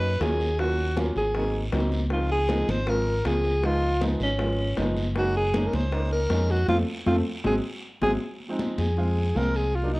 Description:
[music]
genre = Afro-Cuban jazz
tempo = 157 BPM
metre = 4/4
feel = straight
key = unclear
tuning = A4 = 442 Hz
[part]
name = breathy alto saxophone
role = melody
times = 0.0-10.0 s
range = Db4 to C5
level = -27 LUFS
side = equal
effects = none
[part]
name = warm baby grand piano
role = accompaniment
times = 0.0-10.0 s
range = F3 to F4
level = -30 LUFS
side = right 1 dB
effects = none
[part]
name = fingered electric bass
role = bass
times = 0.0-10.0 s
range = Gb1 to F#2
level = -27 LUFS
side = equal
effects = none
[part]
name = bongos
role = percussion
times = 0.0-8.1 s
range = none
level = -36 LUFS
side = left 3 dB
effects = none
[part]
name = congas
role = percussion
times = 0.0-10.0 s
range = none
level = -33 LUFS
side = left 1 dB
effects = none
[part]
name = guiro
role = percussion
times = 0.2-10.0 s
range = none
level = -42 LUFS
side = right 1 dB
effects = none
[sound]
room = light reverb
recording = worn, warbling old tape, cassette tape, warbly pitch drift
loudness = -22 LUFS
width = side -22 dB against mid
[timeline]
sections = 0.0-8.2 A section; 8.2-10.0 B section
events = band accent 6.7-8.2; alto saxophone solo 8.2-10.0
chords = 0.0 Bmaj7; 0.6 Ebm7; 1.3 Ab7; 2.1 Dbmaj7; 3.6 Db7; 5.2 Gb6; 6.7 F; 7.4 Ab7; 8.2 Ab6

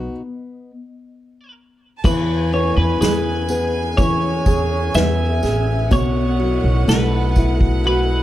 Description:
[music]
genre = pop ballad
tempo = 62 BPM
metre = 4/4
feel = straight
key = E major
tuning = A4 = 439 Hz
[part]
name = twelve-string electric guitar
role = melody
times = 0.0-8.2 s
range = B4 to E5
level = -24 LUFS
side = equal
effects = spring reverb
[part]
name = dark baby grand piano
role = accompaniment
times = 0.0-8.2 s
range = B2 to G#4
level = -22 LUFS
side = equal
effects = none
[part]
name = picked steel-string acoustic guitar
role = arpeggios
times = 0.0-8.2 s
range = B2 to G#4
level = -26 LUFS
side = left 4 dB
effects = none
[part]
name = upright bass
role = bass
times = 0.0-8.2 s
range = A1 to E2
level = -20 LUFS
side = equal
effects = none
[part]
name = clear chamber violin section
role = second line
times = 2.0-8.2 s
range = F#5 to A5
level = -29 LUFS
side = right 1 dB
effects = analog delay
[part]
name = soft-mallet drum kit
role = drums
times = 2.0-8.1 s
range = crash cymbal, kick drum, ride cymbal, snare drum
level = -22 LUFS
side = equal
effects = none
[part]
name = tambourine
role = percussion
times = 2.0-7.6 s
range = none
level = -36 LUFS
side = right 3 dB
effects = none
[sound]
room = light reverb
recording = dark, warm production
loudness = -15 LUFS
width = side -13 dB against mid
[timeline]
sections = 0.0-2.0 A section; 2.0-8.2 B section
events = stop 0.1-2.0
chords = 0.0 B; 2.0 E6; 5.9 B7sus4

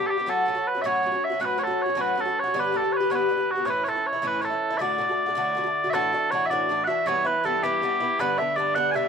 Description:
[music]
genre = celtic folk, Celtic jig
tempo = 106 BPM (dotted quarters)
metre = 6/8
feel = straight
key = D major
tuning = A4 = 440 Hz
[part]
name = mellow small bagpipes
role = melody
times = 0.0-9.1 s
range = F#4 to G#5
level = -23 LUFS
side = right 1 dB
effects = none
[part]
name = Irish bouzouki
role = accompaniment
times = 0.0-9.1 s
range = G2 to G4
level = -27 LUFS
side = left 2 dB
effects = none
[sound]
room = moderate plate reverb, RT60 2.3 s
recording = none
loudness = -22 LUFS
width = side -6 dB against mid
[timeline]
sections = 0.0-5.9 A section; 5.9-9.1 B section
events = none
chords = 0.3 F#m; 2.5 G; 3.7 A; 4.8 D; 5.9 Dadd9; 7.1 Em; 8.2 G

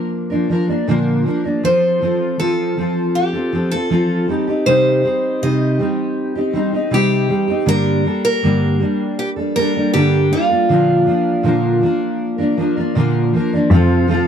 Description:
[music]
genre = acoustic pop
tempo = 80 BPM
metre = 4/4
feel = straight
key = F mixolydian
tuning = A4 = 440 Hz
[part]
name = picked acoustic archtop guitar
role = melody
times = 0.0-12.9 s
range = F4 to Eb5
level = -19 LUFS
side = equal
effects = none
[part]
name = fingerpicked steel-string acoustic guitar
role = accompaniment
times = 0.0-14.3 s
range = G2 to Bb4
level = -16 LUFS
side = equal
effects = double-tracked left and right
[part]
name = tonewheel organ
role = sustained chords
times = 13.7-14.3 s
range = C3 to F4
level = -24 LUFS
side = right 1 dB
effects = stopped rotary speaker
[part]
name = muted cello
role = bass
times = 13.7-14.2 s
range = F2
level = -13 LUFS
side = equal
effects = none
[sound]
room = light reverb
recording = dry, close 1970s-style studio recording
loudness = -14 LUFS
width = side -8 dB against mid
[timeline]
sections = 0.0-13.7 A section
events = none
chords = 0.0 Bb; 1.6 F; 4.3 Cm; 7.7 Gmadd9; 10.7 Bb; 13.7 F

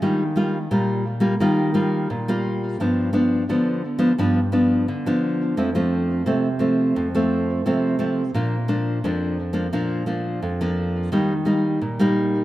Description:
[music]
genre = samba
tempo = 86 BPM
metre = 4/4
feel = straight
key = Eb major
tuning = A4 = 441 Hz
[part]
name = nylon-string guitar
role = solo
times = 0.0-12.4 s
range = F2 to F4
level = -19 LUFS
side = equal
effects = tape echo
[sound]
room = moderate plate reverb, RT60 2.4 s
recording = rough home demo mix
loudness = -19 LUFS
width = side -15 dB against mid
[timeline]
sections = 0.0-12.4 A section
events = none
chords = 0.0 Ebadd9; 2.8 G7; 5.6 F; 8.3 Bb; 11.1 Eb

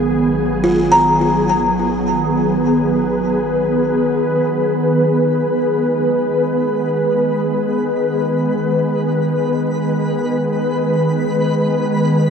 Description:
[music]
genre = ambient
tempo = free time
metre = none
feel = none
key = G# dorian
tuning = A4 = 440 Hz
[part]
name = ethereal airy pad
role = sustained chords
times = 0.0-12.3 s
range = D#3 to B4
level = -15 LUFS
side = equal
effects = ensemble chorus, built-in reverb
[part]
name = warm sub bass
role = bass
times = 0.0-4.5 s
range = G#1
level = -33 LUFS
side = right 1 dB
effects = none
[part]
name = buzzing kalimba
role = arpeggios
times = 0.6-2.7 s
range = E#4 to A#5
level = -17 LUFS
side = equal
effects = ping-pong delay
[part]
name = twinkling granular texture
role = texture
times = 4.9-12.3 s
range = B4 to B5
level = -32 LUFS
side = equal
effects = built-in reverb
[sound]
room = wet huge ambient reverb, RT60 7.8 s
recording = worn, warbling old tape, cassette tape, warbly pitch drift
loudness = -14 LUFS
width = side -6 dB against mid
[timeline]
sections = 0.0-4.5 A section; 4.5-12.3 B section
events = fade-out on sub bass 0.0-4.5; fade-in on synth texture 4.5-12.3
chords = 0.0 B/G#; 4.5 G#m

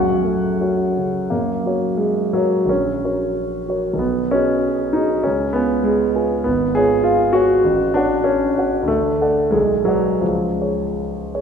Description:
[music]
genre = classical, romantic character piece for solo piano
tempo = 80-103 BPM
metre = 2/4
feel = rubato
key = F# major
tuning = A4 = 441 Hz
[part]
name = warm concert grand piano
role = solo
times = 0.0-11.4 s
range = G#1 to G#5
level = -16 LUFS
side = equal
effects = none
[sound]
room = wet concert hall reverb, RT60 1.9 s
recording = recorded in a church or concert hall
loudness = -16 LUFS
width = side -7 dB against mid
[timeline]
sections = 0.0-1.3 A section; 1.3-11.4 B section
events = none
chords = 0.0 F#m; 1.3 F#; 2.7 F#/A#; 4.0 G#m7/B; 5.3 C#7; 6.5 C#/G#; 7.6 F#m/A; 8.9 D; 9.5 Bm; 10.2 C#

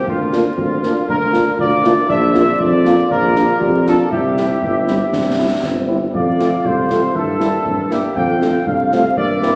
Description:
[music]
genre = military-style march for wind band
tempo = 119 BPM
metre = 2/4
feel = straight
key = F major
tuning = A4 = 440 Hz
[part]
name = warm trumpet section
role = melody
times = 0.0-9.6 s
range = F4 to G5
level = -22 LUFS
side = equal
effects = none
[part]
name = dark woodwind section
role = second line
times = 0.0-9.6 s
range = F4 to F5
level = -25 LUFS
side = equal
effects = none
[part]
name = mellow euphonium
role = second line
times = 0.0-9.6 s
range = Bb3 to G4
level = -26 LUFS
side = equal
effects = none
[part]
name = warm tuba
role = bass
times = 0.1-9.6 s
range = G1 to G2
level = -21 LUFS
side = equal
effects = none
[part]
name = concert bass drum and concert snare drum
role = drums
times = 0.1-9.5 s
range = none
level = -29 LUFS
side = equal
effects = none
[part]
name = mellow French horn section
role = accompaniment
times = 0.3-9.5 s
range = G3 to F4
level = -23 LUFS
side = equal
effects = none
[sound]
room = wet scoring stage reverb, RT60 1.9 s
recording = vinyl crackle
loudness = -16 LUFS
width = mono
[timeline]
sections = 0.0-9.6 A section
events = none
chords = 0.1 Bb/D; 2.1 Bb; 4.1 C; 6.1 F; 7.1 Edim/G; 8.2 F

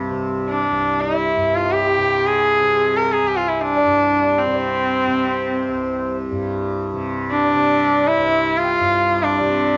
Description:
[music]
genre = indian classical, Hindustani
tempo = free time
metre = none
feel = none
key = C major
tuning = A4 = 438 Hz
[part]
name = tanpura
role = drone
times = 0.0-9.8 s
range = C2 to C3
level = -27 LUFS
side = equal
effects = cassette tape
[part]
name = clear sarangi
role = melody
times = 0.5-9.8 s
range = C4 to Bb4-21c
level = -19 LUFS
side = equal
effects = cassette tape
[part]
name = pedal harmonium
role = second line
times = 0.6-9.8 s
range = C5 to Bb5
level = -27 LUFS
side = equal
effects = cassette tape
[sound]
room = moderate studio reverb, RT60 0.6 s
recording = home recording on cassette, nothing above 7.6 kHz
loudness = -19 LUFS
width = mono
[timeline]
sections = 0.0-9.8 A section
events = none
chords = none

